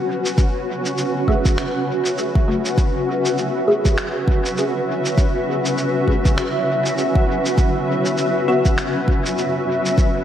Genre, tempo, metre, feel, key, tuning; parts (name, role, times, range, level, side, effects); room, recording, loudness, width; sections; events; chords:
ambient dub; 100 BPM; 4/4; swing 59% on 16ths; A4 = 440 Hz
granular cloud pad; sustained chords; 0.0-10.2 s; F#3 to E5; -19 LUFS; equal; built-in reverb, wide subtle chorus
electronic shaker and finger snaps; drums; 0.3-10.1 s; -29 LUFS; equal; dub echo
electronic kick drum; drums; 0.4-10.1 s; -17 LUFS; equal
filtered dub chord stab; stabs; 1.3-8.7 s; A3 to E5; -24 LUFS; equal; phaser, lush chorus, dub echo
wet lush hall reverb, RT60 2.2 s; dreamy mix soaked in reverb; -17 LUFS; side -10 dB against mid
0.0-10.2 A section
0.0 F#7(no3); 7.6 Esus2/F#